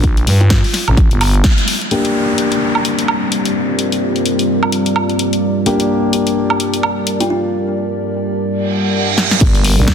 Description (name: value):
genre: bass house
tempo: 128 BPM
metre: 4/4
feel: swing 58% on 16ths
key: G minor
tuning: A4 = 440 Hz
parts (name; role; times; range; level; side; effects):
- growling FM bass; bass; 0.0-1.4, 9.4-9.9 s; G1 to G2; -12 LUFS; equal; overdrive, sidechain pumping
- electronic kick drum; drums; 0.0-1.6, 9.4-9.9 s; none; -13 LUFS; equal; small room ambience
- house drum kit; drums; 0.0-9.9 s; crash cymbal, hi-hat, snare drum, woodblock; -18 LUFS; right 1 dB; small room ambience
- kalimba; melody; 0.4-0.5, 7.2-7.4 s; F4; -24 LUFS; right 1 dB; tape echo
- dark analog pad; sustained chords; 1.9-9.9 s; G3 to D5; -21 LUFS; equal; chorus, sidechain pumping
- dark concert grand piano; stabs; 1.9-7.5 s; Bb3 to G4; -19 LUFS; left 3 dB; sidechain pumping, low-pass filter, tape echo
- downlifter, reverse cymbal and impact; sound effects; 1.9-5.7, 8.6-9.9 s; none; -21 LUFS; right 2 dB; none
- deep dark ambient pad; texture; 2.9-9.9 s; G3 to A5; -19 LUFS; equal; chorus, built-in reverb, sidechain pumping
room: moderate lush hall reverb, RT60 1.8 s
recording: dense, heavily limited modern master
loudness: -12 LUFS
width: side -8 dB against mid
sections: 0.0-1.9 A section; 1.9-9.4 B section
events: filter sweep on FM bass 0.0-1.9; band accent 1.4; filter sweep on grand piano 1.9-9.4; reverse cymbal 8.6-9.4; drum fill 9.2; impact 9.4-9.9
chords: 0.0 Gm